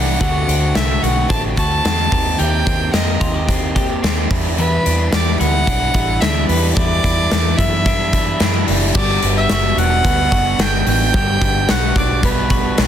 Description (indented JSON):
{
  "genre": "jangly indie pop",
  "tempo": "110 BPM",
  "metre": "4/4",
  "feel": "straight",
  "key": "G major",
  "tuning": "A4 = 440 Hz",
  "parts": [
    { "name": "clear violin", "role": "melody", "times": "0.0-12.9 s", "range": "B4 to A5", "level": "-20 LUFS", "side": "right 1 dB", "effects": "tape echo" },
    { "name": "crunchy overdriven guitar", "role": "accompaniment", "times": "0.0-12.9 s", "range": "E2 to G4", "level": "-24 LUFS", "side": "right 6 dB", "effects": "none" },
    { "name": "twelve-string electric guitar", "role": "arpeggios", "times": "0.0-12.9 s", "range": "E2 to G4", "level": "-23 LUFS", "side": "left 5 dB", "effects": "tube saturation, spring reverb, tape echo" },
    { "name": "vintage muted fingered electric bass", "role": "bass", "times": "0.0-12.9 s", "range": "E1 to F#2", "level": "-20 LUFS", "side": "equal", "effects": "none" },
    { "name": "big rock drum kit", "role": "drums", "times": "0.2-12.9 s", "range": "crash cymbal, hi-hat, kick drum, snare drum", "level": "-18 LUFS", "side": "equal", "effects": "soft clipping on kick" },
    { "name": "glockenspiel with soft plastic mallets", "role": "second line", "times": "9.0-12.9 s", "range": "B5 to G6", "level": "-26 LUFS", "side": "equal", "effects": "none" }
  ],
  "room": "little or no reverb",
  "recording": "dense, heavily limited modern master",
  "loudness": "-14 LUFS",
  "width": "side -10 dB against mid",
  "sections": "0.0-9.0 A section; 9.0-12.9 B section",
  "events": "none",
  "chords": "0.2 D7; 2.1 Eb6; 4.3 Em7; 9.0 Gmaj7",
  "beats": "| 0.20 0.75 1.30 1.84 | 2.39 2.94 3.48 4.03 | 4.58 5.12 5.67 6.22 | 6.76 7.31 7.86 8.40 | 8.95 9.50 10.04 10.59 | 11.14 11.69 12.23 12.78"
}